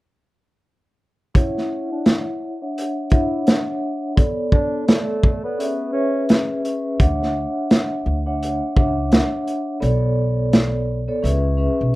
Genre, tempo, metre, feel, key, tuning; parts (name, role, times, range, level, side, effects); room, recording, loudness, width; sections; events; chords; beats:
hip hop, boom-bap hip-hop; 85 BPM; 4/4; swing 62% on 16ths; A4 = 438 Hz
vibraphone with soft mallets; accompaniment; 1.3-12.0 s; B3 to F#5; -22 LUFS; equal; high-pass filter, low-pass filter
crunchy breakbeat drum kit; drums; 1.3-11.4 s; hi-hat, kick drum, snare drum; -16 LUFS; equal
breathy tenor saxophone; melody; 1.4-6.2 s; A3 to E4; -27 LUFS; right 1 dB; high-pass filter, low-pass filter
upright bass; bass; 7.0-11.9 s; B1 to D2; -21 LUFS; equal
little or no reverb; rough home demo mix; -17 LUFS; side -19 dB against mid
1.3-12.0 A section
filter sweep 1.3-12.0; kick muted 9.8-12.0
1.3 Dmaj9; 4.2 Bm9; 5.6 C#m7; 7.0 Dmaj9; 9.8 Bm9; 11.2 C#m7
| 1.35 2.06 2.76 3.47 | 4.17 4.88 5.58 6.29 | 7.00 7.70 8.41 9.11 | 9.82 10.53 11.23 11.94